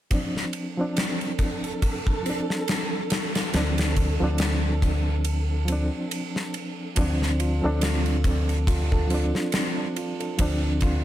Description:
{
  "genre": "trip hop",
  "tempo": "70 BPM",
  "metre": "4/4",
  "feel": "swing 57% on 16ths",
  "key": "D minor",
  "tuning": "A4 = 444 Hz",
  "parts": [
    { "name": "bright reed electric piano", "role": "accompaniment", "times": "0.1-11.0 s", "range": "F3 to D4", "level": "-29 LUFS", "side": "equal", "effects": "tremolo, low-pass filter, tape echo" },
    { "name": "gated 80s drum kit", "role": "drums", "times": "0.1-11.0 s", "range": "kick drum, ride cymbal, snare drum", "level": "-27 LUFS", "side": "equal", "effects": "none" },
    { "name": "flickering grainy texture", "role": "texture", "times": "1.0-7.0 s", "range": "A4", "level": "-36 LUFS", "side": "right 2 dB", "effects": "built-in reverb" },
    { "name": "deep dub fingered electric bass", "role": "bass", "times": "3.5-11.0 s", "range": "D2", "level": "-24 LUFS", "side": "equal", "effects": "none" },
    { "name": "felt-muted upright piano", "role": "arpeggios", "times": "7.0-11.0 s", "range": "C4 to A4", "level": "-31 LUFS", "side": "right 3 dB", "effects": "tape echo" }
  ],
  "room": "light reverb",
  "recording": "none",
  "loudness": "-22 LUFS",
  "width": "side -13 dB against mid",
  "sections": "0.1-7.0 A section; 7.0-11.0 B section",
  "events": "filter sweep on reed electric piano 0.1-7.0; break 5.3-7.0",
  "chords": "0.1 Dm7"
}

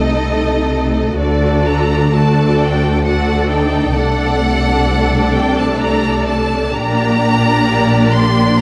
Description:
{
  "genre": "classical, slow romantic movement for string orchestra",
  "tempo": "64 BPM",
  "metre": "3/4",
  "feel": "rubato",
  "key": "unclear",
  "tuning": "A4 = 438 Hz",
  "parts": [
    { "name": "rich studio violin section", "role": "melody", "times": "0.0-8.6 s", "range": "D5 to C6", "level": "-23 LUFS", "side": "equal", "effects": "none" },
    { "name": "rich studio violin section", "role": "second line", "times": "0.0-8.6 s", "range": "G4 to D5", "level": "-24 LUFS", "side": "equal", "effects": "none" },
    { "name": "rich studio viola section", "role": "accompaniment", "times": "0.0-8.6 s", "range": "A3 to F#4", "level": "-20 LUFS", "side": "equal", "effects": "none" },
    { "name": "clear studio double bass section", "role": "bass", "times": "0.0-8.6 s", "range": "Bb1 to D2", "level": "-21 LUFS", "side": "equal", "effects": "none" },
    { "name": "rich studio cello section", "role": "bass", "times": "0.0-8.6 s", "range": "Bb2 to D3", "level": "-21 LUFS", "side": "equal", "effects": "none" }
  ],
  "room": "moderate recital hall reverb, RT60 1.5 s",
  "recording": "vinyl crackle",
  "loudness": "-14 LUFS",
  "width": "mono",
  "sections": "0.0-8.6 A section",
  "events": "none",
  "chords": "0.0 Adim/C; 1.2 D; 4.0 D7/C; 6.7 Gm/Bb"
}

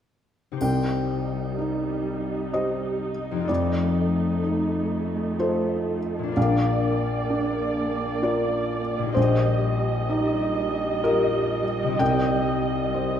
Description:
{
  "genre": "cinematic, emotional film score for orchestra",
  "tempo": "63 BPM",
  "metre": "3/4",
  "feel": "rubato",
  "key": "C minor",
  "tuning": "A4 = 440 Hz",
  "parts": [
    { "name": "concert harp", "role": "arpeggios", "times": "0.5-13.2 s", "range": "F2 to C5", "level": "-30 LUFS", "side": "left 6 dB", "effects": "none" },
    { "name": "dark symphonic viola section", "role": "accompaniment", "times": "0.6-13.2 s", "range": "G3 to Eb5", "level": "-28 LUFS", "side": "right 2 dB", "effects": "none" },
    { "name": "felt-muted upright piano", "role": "accompaniment", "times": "0.6-13.2 s", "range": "Bb1 to G5", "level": "-24 LUFS", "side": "equal", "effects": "none" },
    { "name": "triangle", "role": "percussion", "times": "0.6-2.5 s", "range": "none", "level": "-49 LUFS", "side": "right 2 dB", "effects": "none" }
  ],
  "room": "moderate scoring stage reverb, RT60 2.0 s",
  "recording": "none",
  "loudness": "-22 LUFS",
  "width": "side -9 dB against mid",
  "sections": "0.6-13.2 A section",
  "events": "none",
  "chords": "0.6 Cm; 3.5 F7; 6.4 Bb; 9.2 Ebadd9/Bb; 12.0 Cm"
}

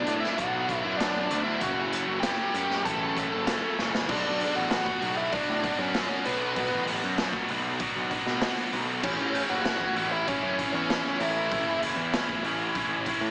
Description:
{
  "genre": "quiet-loud alternative rock",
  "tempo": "97 BPM",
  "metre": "4/4",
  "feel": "straight",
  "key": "B minor",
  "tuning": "A4 = 442 Hz",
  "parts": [
    { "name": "bluesy overdriven lead guitar", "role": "melody", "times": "0.0-11.8 s", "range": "B3 to A5", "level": "-29 LUFS", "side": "equal", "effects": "distortion, slapback echo" },
    { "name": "high-gain distorted guitar", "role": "riff", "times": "0.0-13.3 s", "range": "F#2 to F#4", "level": "-28 LUFS", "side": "equal", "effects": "distortion, slapback echo" },
    { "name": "fuzz picked electric bass", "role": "bass", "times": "0.0-13.3 s", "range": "F#1 to B2", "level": "-33 LUFS", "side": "equal", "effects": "overdrive" },
    { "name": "raw garage drum kit", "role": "drums", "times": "0.1-13.2 s", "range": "crash cymbal, hi-hat, kick drum, snare drum", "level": "-32 LUFS", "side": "equal", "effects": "none" }
  ],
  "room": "moderate concert hall reverb, RT60 2.0 s, small room ambience",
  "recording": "big arena sound, small speaker sound",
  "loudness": "-25 LUFS",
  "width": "side -24 dB against mid",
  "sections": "0.0-4.1 A section; 4.1-13.3 B section",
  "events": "drum fill 3.8-4.1",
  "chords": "0.0 Bm; 1.6 F#m; 4.1 Bm; 9.0 A"
}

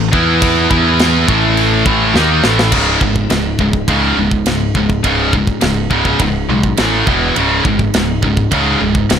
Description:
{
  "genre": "heavy metal",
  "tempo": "104 BPM",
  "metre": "4/4",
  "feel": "straight",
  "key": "C# minor",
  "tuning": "A4 = 440 Hz",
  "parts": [
    { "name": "heavy high-gain guitar", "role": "riff", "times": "0.0-9.2 s", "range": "C#2 to E4", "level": "-16 LUFS", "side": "right 11 dB", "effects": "distortion" },
    { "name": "scooped high-gain guitar", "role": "riff", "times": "0.0-9.2 s", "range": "C#2 to E4", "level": "-16 LUFS", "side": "left 10 dB", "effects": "distortion" },
    { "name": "growling picked electric bass", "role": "bass", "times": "0.0-9.2 s", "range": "C#1 to E2", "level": "-18 LUFS", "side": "equal", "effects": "overdrive" },
    { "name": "tight metal drum kit", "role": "drums", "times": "0.1-9.2 s", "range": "crash cymbal, kick drum, ride cymbal, snare drum", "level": "-18 LUFS", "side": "equal", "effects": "none" }
  ],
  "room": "small room reverb",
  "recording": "none",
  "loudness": "-11 LUFS",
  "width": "side -8 dB against mid",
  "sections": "0.0-2.7 A section; 2.7-9.2 B section",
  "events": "drum fill 2.2-2.7",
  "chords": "0.1 E5; 1.3 A5; 2.7 C#5; 6.8 A5; 7.1 E5; 7.4 C#5"
}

